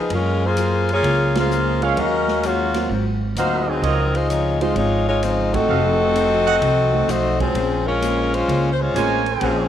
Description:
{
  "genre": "jazz, big band swing",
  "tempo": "129 BPM",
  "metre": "4/4",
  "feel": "swing 67% on 8ths",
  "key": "Bb minor",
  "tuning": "A4 = 440 Hz",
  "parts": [
    { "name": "warm saxophone section", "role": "melody", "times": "0.0-9.7 s", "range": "F3 to Eb5", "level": "-19 LUFS", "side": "left 2 dB", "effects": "none" },
    { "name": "archtop guitar, miked and amplified", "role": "accompaniment", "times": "0.1-9.7 s", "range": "Ab2 to C5", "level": "-30 LUFS", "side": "left 9 dB", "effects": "none" },
    { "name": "upright bass", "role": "bass", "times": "0.1-9.7 s", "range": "F1 to Gb2", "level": "-22 LUFS", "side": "right 1 dB", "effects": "none" },
    { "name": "swinging big-band drum kit", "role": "drums", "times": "0.1-9.6 s", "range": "hi-hat, kick drum, ride cymbal, snare drum", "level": "-34 LUFS", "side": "left 2 dB", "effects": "none" },
    { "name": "warm baby grand piano", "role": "accompaniment", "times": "1.3-9.2 s", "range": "Gb3 to F5", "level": "-28 LUFS", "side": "right 10 dB", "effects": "none" },
    { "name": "warm trumpet section", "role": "stabs", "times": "1.8-9.7 s", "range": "F4 to Ab5", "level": "-25 LUFS", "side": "right 8 dB", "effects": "none" }
  ],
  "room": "moderate echo chamber reverb, RT60 2.1 s",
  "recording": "1960s-style stereo with parts hard left and right",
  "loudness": "-17 LUFS",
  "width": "side -10 dB against mid",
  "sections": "0.0-9.7 A section",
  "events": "band accent 1.3, 5.5",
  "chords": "0.1 Gbmaj9; 2.0 Ebm11; 2.9 Ab13; 3.8 Dbmaj9; 5.7 F7b9; 7.5 Bbm9"
}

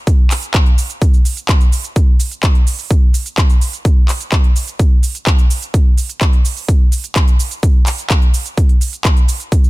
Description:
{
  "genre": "EDM",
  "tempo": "127 BPM",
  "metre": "4/4",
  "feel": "straight",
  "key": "none",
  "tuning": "none",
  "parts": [
    { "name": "big-room dance drum kit", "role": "drums", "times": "0.1-9.7 s", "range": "cabasa, handclaps, hi-hat", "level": "-20 LUFS", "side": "right 1 dB", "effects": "none" },
    { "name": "electronic kick drum", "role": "drums", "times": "0.1-9.6 s", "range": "none", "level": "-11 LUFS", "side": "equal", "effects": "none" }
  ],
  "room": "digital ambience",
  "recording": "none",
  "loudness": "-11 LUFS",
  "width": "side -20 dB against mid",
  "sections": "0.0-9.7 A section",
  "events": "none",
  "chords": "none"
}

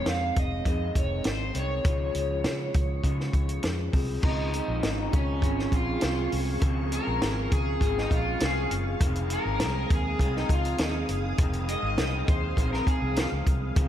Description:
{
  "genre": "indie pop, bedroom pop",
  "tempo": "101 BPM",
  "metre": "4/4",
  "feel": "straight",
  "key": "Db major",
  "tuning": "A4 = 439 Hz",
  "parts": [
    { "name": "overdriven slide guitar", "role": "melody", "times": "0.0-13.2 s", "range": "Db4 to F5", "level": "-32 LUFS", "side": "equal", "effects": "lush chorus, analog delay" },
    { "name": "electric guitar through a small old amp", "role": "accompaniment", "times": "0.0-13.9 s", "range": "F2 to C4", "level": "-33 LUFS", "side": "left 1 dB", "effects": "wide subtle chorus, warbly pitch drift" },
    { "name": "vintage muted fingered electric bass", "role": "bass", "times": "0.1-13.9 s", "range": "F1 to Db3", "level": "-30 LUFS", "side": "equal", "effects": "none" },
    { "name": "compact cocktail drum kit", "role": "drums", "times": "0.1-13.9 s", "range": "crash cymbal, hi-hat, kick drum, snare drum", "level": "-27 LUFS", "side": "equal", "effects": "none" },
    { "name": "soft string machine", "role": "sustained chords", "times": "4.2-13.9 s", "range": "Ab4 to Eb6", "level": "-37 LUFS", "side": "right 1 dB", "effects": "ensemble chorus" }
  ],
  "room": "moderate lush hall reverb, RT60 1.9 s, studio reverb",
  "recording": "dreamy mix soaked in reverb",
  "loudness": "-24 LUFS",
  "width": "side -11 dB against mid",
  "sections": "0.0-4.2 A section; 4.2-13.9 B section",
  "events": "electric slide guitar solo 4.2-13.9",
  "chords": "0.0 Fm7; 1.9 Dbmaj7; 9.0 Fm7"
}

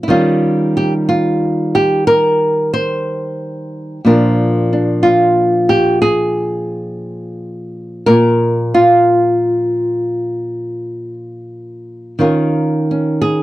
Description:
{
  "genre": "solo jazz",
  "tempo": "60 BPM",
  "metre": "4/4",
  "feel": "swing 67% on 8ths, rubato",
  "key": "unclear",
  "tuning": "A4 = 440 Hz",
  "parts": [
    { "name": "flamenco guitar", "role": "solo", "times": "0.0-13.4 s", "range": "Bb2 to C5", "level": "-13 LUFS", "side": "equal", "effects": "none" }
  ],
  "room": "light reverb",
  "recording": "dry, close 1970s-style studio recording",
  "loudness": "-12 LUFS",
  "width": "side -16 dB against mid",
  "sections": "0.0-13.4 A section",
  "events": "none",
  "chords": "0.1 Eb9; 4.0 Bb7; 12.2 Eb7sus2"
}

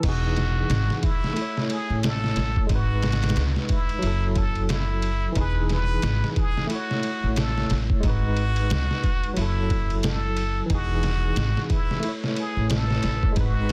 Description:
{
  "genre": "trip hop",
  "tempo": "90 BPM",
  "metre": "4/4",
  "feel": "swing 60% on 16ths",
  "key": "unclear",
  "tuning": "A4 = 441 Hz",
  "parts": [
    { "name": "trumpet with plunger mute", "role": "melody", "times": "0.0-13.7 s", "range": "E4 to B4", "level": "-33 LUFS", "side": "equal", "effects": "vintage 12-bit sampler grit, tape echo" },
    { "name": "barky tine electric piano", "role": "accompaniment", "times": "0.0-13.7 s", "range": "E3 to C#5", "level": "-32 LUFS", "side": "equal", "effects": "tremolo, vintage 12-bit sampler grit, tape echo" },
    { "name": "upright bass", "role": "bass", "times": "0.0-13.7 s", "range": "E1 to C#2", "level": "-27 LUFS", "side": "equal", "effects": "none" },
    { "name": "trip hop sampler-style drum kit", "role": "drums", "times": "0.0-13.7 s", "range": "crash cymbal, kick drum, ride cymbal, snare drum", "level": "-28 LUFS", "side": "equal", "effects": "none" },
    { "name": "wind-like tuned noise texture", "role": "texture", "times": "11.6-13.7 s", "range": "B4", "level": "-46 LUFS", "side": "equal", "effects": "none" }
  ],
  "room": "digital ambience",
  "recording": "dense, heavily limited modern master",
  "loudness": "-24 LUFS",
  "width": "mono",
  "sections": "0.0-13.7 A section",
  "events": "none",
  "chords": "0.0 Emaj7; 1.4 A; 2.7 G#m; 4.0 F#m7; 5.4 Emaj7; 6.7 A; 8.0 G#m; 9.4 F#m7; 10.7 Emaj7; 12.0 A"
}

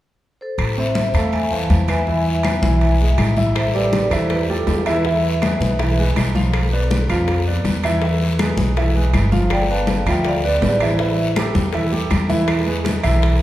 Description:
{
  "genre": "latin, salsa",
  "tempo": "161 BPM",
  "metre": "4/4",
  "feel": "straight",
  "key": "A harmonic minor",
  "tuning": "A4 = 441 Hz",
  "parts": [
    { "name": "vibraphone with medium hard mallets", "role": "melody", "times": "0.4-6.0, 9.5-11.3 s", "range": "F4 to A5", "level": "-23 LUFS", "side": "equal", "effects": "none" },
    { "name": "upright bass", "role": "bass", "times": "0.6-13.4 s", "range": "G1 to F2", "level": "-20 LUFS", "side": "equal", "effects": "none" },
    { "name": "claves", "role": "percussion", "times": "0.6-13.2 s", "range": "none", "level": "-34 LUFS", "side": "left 2 dB", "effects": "none" },
    { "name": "congas", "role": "percussion", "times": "0.6-13.4 s", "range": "none", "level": "-24 LUFS", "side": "left 2 dB", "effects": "none" },
    { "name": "guiro", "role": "percussion", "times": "0.6-13.4 s", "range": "none", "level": "-32 LUFS", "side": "left 4 dB", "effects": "none" },
    { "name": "timbales", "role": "percussion", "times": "0.6-13.4 s", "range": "none", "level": "-29 LUFS", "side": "right 4 dB", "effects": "none" },
    { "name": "bright upright piano", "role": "accompaniment", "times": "0.8-13.3 s", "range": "E3 to F5", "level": "-21 LUFS", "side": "right 1 dB", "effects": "none" },
    { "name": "bongos", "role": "percussion", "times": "3.6-13.4 s", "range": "none", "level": "-30 LUFS", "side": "left 4 dB", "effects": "none" }
  ],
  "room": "wet recital hall reverb, RT60 1.6 s",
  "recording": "recorded in a church or concert hall",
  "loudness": "-16 LUFS",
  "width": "side -14 dB against mid",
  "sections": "0.6-3.6 A section; 3.6-13.4 B section",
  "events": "none",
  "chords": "0.0 N.C.; 0.6 Am; 2.1 E; 3.6 A7(no3); 5.0 E; 6.5 Bdim; 8.0 E; 9.5 G7; 11.0 Am7; 12.5 E"
}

